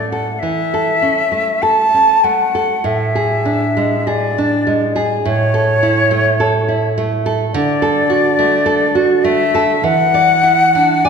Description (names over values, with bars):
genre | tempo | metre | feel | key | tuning
romantic duo for flute and classical guitar | 48-53 BPM | 4/4 | rubato | A major | A4 = 438 Hz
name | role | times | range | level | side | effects
bright silver concert flute | melody | 0.0-11.1 s | C#5 to A5 | -14 LUFS | left 2 dB | none
nylon-string guitar | accompaniment | 0.0-11.1 s | A2 to D5 | -16 LUFS | right 3 dB | none
room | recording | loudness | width
wet recital hall reverb, RT60 1.8 s | recorded in a church or concert hall | -12 LUFS | side -6 dB against mid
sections
0.0-11.1 A section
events
none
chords
0.0 A; 2.8 E7/A; 5.2 A; 7.5 D; 9.8 E7(no3)